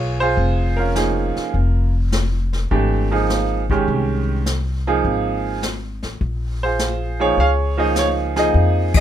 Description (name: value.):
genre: jazz piano trio.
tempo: 103 BPM.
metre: 4/4.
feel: swing 69% on 8ths.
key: F minor.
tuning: A4 = 440 Hz.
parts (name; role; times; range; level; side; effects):
bright baby grand piano; melody; 0.0-9.0 s; Eb3 to F5; -19 LUFS; right 3 dB; none.
upright bass; bass; 0.0-9.0 s; F1 to F2; -20 LUFS; left 1 dB; none.
jazz brush drum kit; drums; 0.4-9.0 s; brushed snare drum, hi-hat, kick drum, ride cymbal, snare drum; -24 LUFS; left 3 dB; none.
room: light reverb.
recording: minimal, uncompressed stereo recording.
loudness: -17 LUFS.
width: side -10 dB against mid.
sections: 0.0-9.0 A section.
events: band accent 8.8.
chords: 0.0 Bbm7; 1.5 Fm9; 6.2 Bbm7.